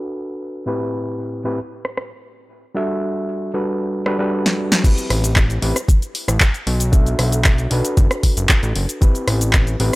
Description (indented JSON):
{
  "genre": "nu-disco, nu disco",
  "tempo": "115 BPM",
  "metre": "4/4",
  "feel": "straight",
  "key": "A dorian",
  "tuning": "A4 = 439 Hz",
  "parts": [
    { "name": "overdriven reed electric piano", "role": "accompaniment", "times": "0.0-9.9 s", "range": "A2 to E5", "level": "-23 LUFS", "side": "equal", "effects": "sidechain pumping, tape echo" },
    { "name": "house drum kit", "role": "drums", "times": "1.8-10.0 s", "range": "crash cymbal, handclaps, hi-hat, rim click, shaker, snare drum", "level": "-20 LUFS", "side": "equal", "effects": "low-pass filter on snare, low-pass filter on hats, low-pass filter on cymbals, low-pass filter on perc" },
    { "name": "electronic kick drum", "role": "drums", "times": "4.8-9.6 s", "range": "none", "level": "-14 LUFS", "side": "equal", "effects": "none" },
    { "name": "fat analog bass", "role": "bass", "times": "5.1-9.9 s", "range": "F#1 to B1", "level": "-19 LUFS", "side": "equal", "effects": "sidechain pumping" }
  ],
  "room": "little or no reverb",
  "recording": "dry, gritty hardware recording, low-pass filter",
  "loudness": "-16 LUFS",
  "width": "side -21 dB against mid",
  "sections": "0.0-4.8 A section; 4.8-10.0 B section",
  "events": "filter sweep on reed electric piano 0.0-4.8; filter sweep 0.0-4.8; drum fill 4.5-4.8; drop 4.8-10.0",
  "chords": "0.0 Bm7; 0.7 Am7; 2.8 Gmaj7; 4.8 Am7; 6.9 Bm7; 9.0 Am7"
}